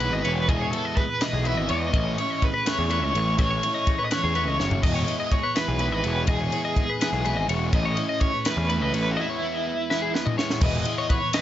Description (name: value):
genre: math rock and midwest emo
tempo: 83 BPM (dotted quarters)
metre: 6/8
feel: straight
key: E major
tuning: A4 = 440 Hz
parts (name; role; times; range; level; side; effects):
- overdriven electric guitar; melody; 0.0-11.4 s; E4 to E5; -27 LUFS; equal; tremolo
- twelve-string electric guitar; accompaniment; 0.0-11.4 s; E2 to G#4; -34 LUFS; right 6 dB; lush chorus
- twelve-string electric guitar; arpeggios; 0.0-11.4 s; G#4 to D#5; -31 LUFS; left 5 dB; none
- biting overdriven guitar; riff; 0.0-11.4 s; E3 to E4; -32 LUFS; equal; none
- fuzz picked electric bass; bass; 0.0-10.8 s; E1 to E2; -27 LUFS; equal; overdrive
- crisp fusion drum kit; drums; 0.0-11.4 s; crash cymbal, kick drum, ride cymbal, snare drum, toms; -27 LUFS; equal; none
room: light reverb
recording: nothing above 7.6 kHz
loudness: -22 LUFS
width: side -12 dB against mid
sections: 0.0-10.6 A section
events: drum fill 4.6, 9.9-10.6; break 9.2-10.6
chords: 0.0 Emaj7; 1.9 Amaj9; 4.8 Emaj7; 7.7 Amaj9; 9.2 Emaj7